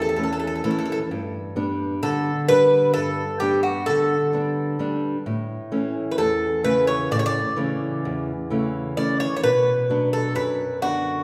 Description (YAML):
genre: greek folk, Greek bouzouki band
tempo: 130 BPM (eighths)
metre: 9/8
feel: straight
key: unclear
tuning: A4 = 440 Hz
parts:
  - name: Greek bouzouki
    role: melody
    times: 0.0-11.2 s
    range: F#4 to D5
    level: -24 LUFS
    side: equal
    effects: none
  - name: nylon-string guitar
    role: accompaniment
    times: 0.0-11.2 s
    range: E2 to D4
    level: -27 LUFS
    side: equal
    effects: none
room: wet recital hall reverb, RT60 1.8 s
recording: recorded in a church or concert hall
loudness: -23 LUFS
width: mono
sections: 0.0-9.4 A section; 9.4-11.2 B section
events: none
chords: 0.0 A; 1.1 G; 5.3 A; 9.4 Bm